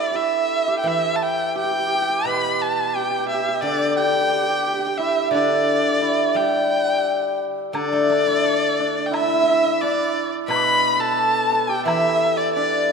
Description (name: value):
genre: chinese traditional, Chinese chamber ensemble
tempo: 87 BPM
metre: 2/4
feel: rubato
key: G gong mode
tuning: A4 = 440 Hz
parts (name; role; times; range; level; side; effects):
- clear erhu; melody; 0.0-12.9 s; D5 to B5; -22 LUFS; equal; none
- hammered dulcimer; second line; 0.0-12.9 s; D4 to B4; -23 LUFS; right 6 dB; none
- steel-string zither; accompaniment; 0.0-12.9 s; B2 to A4; -24 LUFS; left 5 dB; none
- woodblock; percussion; 7.7-12.0 s; none; -32 LUFS; left 1 dB; none
- mellow large dizi; second line; 7.8-12.9 s; D5 to D6; -25 LUFS; left 3 dB; none
room: wet concert hall reverb, RT60 1.9 s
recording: none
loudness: -18 LUFS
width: side -5 dB against mid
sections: 0.0-7.7 A section; 7.7-12.9 B section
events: none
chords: none